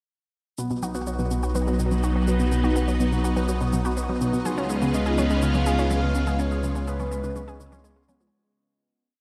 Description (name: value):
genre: ambient, sequencer-driven space music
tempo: 124 BPM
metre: 4/4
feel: straight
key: B lydian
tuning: A4 = 440 Hz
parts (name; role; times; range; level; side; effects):
- phased string machine; sustained chords; 0.6-8.3 s; C#3 to E#4; -30 LUFS; equal; ensemble chorus, phaser
- Celtic harp; arpeggios; 0.6-9.2 s; G#3 to B4; -32 LUFS; equal; tape echo
- analog pluck; riff; 0.6-8.3 s; B2 to G#4; -32 LUFS; equal; chorus, tape echo
- warm sub bass; bass; 0.6-8.3 s; B1 to C#2; -29 LUFS; equal; none
- cabasa and congas; percussion; 0.6-8.3 s; none; -37 LUFS; equal; tape echo
- pulse-width lead; melody; 4.9-8.1 s; B4 to E#5; -34 LUFS; equal; chorus, tape echo
room: moderate lush hall reverb, RT60 2.6 s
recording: dreamy mix soaked in reverb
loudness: -24 LUFS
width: mono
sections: 0.6-8.3 A section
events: fade-out 5.7-8.3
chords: 0.6 B; 4.5 C#7